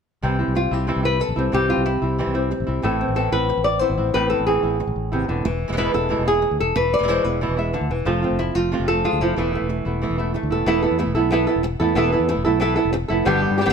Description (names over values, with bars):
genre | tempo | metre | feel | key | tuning
flamenco | 184 BPM | 4/4 | straight | unclear | A4 = 439 Hz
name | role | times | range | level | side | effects
flamenco guitar | melody | 0.2-13.7 s | A2 to E5 | -20 LUFS | equal | none
flamenco guitar | stabs | 0.2-13.6 s | B2 to G4 | -26 LUFS | right 3 dB | none
fingered electric bass | bass | 0.2-13.7 s | E1 to G2 | -25 LUFS | left 1 dB | none
room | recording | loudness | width
light reverb | none | -18 LUFS | side -6 dB against mid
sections
0.2-10.7 A section; 10.7-13.7 B section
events
none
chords
0.2 C; 2.8 Amadd9; 5.5 E; 8.1 F; 9.4 Esus4